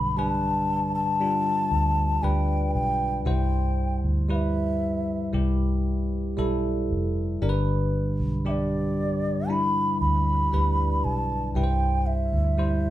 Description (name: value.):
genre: pop.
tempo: 58 BPM.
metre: 4/4.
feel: straight.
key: C major.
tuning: A4 = 440 Hz.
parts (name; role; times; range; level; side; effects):
mellow bansuri; melody; 0.0-12.9 s; D5 to B5; -27 LUFS; equal; none.
bell-like tine electric piano; accompaniment; 0.0-12.9 s; G2 to C5; -27 LUFS; left 1 dB; phaser.
vintage muted fingered electric bass; bass; 0.0-12.9 s; F1 to D2; -26 LUFS; equal; none.
room: moderate large studio reverb, RT60 0.7 s.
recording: band playing live in one room.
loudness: -22 LUFS.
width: side -14 dB against mid.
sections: 0.0-12.9 A section.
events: none.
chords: 0.0 G; 3.3 C; 7.4 G; 11.6 C.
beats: 0.18 1.21 2.23 | 3.26 4.30 5.34 6.38 | 7.43 8.46 9.50 10.53 | 11.56 12.58.